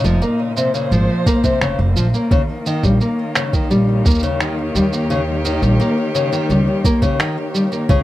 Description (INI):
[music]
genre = folktronica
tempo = 86 BPM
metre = 4/4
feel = straight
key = Eb mixolydian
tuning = A4 = 440 Hz
[part]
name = warm string quartet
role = sustained chords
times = 0.0-8.0 s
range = Bb2 to Db5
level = -23 LUFS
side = left 1 dB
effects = vintage 12-bit sampler grit, plate reverb
[part]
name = nylon-string guitar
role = arpeggios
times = 0.0-8.0 s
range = C3 to Bb3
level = -18 LUFS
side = left 1 dB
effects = digital delay, plate reverb
[part]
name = upright bass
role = bass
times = 0.0-8.0 s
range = F1 to Eb2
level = -18 LUFS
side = right 1 dB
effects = none
[part]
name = electronic cabasa and finger snaps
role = drums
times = 0.0-8.0 s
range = none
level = -23 LUFS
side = right 2 dB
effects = overdrive
[part]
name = electronic kick drum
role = drums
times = 1.3-8.0 s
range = none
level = -17 LUFS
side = equal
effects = overdrive
[sound]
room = moderate studio reverb, RT60 0.6 s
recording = none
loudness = -14 LUFS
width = side -15 dB against mid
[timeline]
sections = 0.0-8.0 A section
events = none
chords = 0.0 Bbmadd9; 2.3 Eb7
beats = 0.22 0.92 1.61 | 2.31 3.01 3.71 4.40 | 5.10 5.80 6.50 7.19 | 7.89